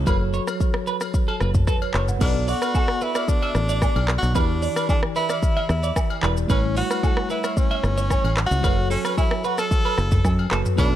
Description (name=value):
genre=afrobeats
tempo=112 BPM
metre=4/4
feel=straight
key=B minor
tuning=A4 = 436 Hz
part: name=tine electric piano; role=accompaniment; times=0.0-11.0 s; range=E3 to F#5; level=-28 LUFS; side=equal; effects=medium stereo tremolo
part: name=fingered electric bass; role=bass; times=0.0-11.0 s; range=E1 to F#2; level=-22 LUFS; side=equal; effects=none
part: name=twelve-string electric guitar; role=riff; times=0.1-10.9 s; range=A4 to E5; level=-29 LUFS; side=right 5 dB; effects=ping-pong delay
part: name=afro-pop drum kit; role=drums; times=0.1-10.9 s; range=crash cymbal, handclaps, hi-hat, kick drum, rim click, shaker, toms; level=-23 LUFS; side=equal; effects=none
part: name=agogo bells and woodblock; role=percussion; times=0.1-10.9 s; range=none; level=-34 LUFS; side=left 3 dB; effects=none
part: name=breathy tenor saxophone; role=melody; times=2.2-11.0 s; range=C#4 to A4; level=-27 LUFS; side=left 1 dB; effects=ping-pong delay
part: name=mellow French horn section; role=sustained chords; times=10.8-11.0 s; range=A3 to D4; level=-30 LUFS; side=left 2 dB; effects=none
room=digital ambience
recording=none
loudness=-19 LUFS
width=side -12 dB against mid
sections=0.0-2.2 A section; 2.2-11.0 B section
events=none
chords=0.1 F#m; 2.2 Bm7; 4.4 Em7; 6.5 A7; 8.6 F#m